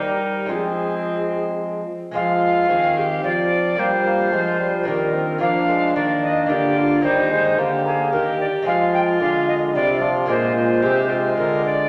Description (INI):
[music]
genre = classical, renaissance-style consort dance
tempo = 111 BPM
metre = 3/4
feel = straight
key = F dorian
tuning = A4 = 440 Hz
[part]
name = mellow alto recorder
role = melody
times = 0.0-11.9 s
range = Ab4 to G5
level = -24 LUFS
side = equal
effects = none
[part]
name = rich viola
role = second line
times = 0.0-11.9 s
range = C4 to Ab4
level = -28 LUFS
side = equal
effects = none
[part]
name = lute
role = accompaniment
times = 0.0-11.9 s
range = Bb2 to Eb5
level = -29 LUFS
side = equal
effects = none
[part]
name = mellow bassoon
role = accompaniment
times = 0.0-11.9 s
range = F3 to C4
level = -26 LUFS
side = equal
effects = none
[part]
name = warm trombone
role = bass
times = 0.0-11.9 s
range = Bb2 to G3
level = -28 LUFS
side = equal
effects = none
[sound]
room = wet recital hall reverb, RT60 1.6 s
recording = none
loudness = -20 LUFS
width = mono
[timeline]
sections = 0.0-2.1 A section; 2.1-11.9 A section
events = none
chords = 0.0 Eb; 0.5 Fm; 3.8 Gm; 5.4 Bb; 7.0 Eb; 8.7 Fm; 10.3 Bb7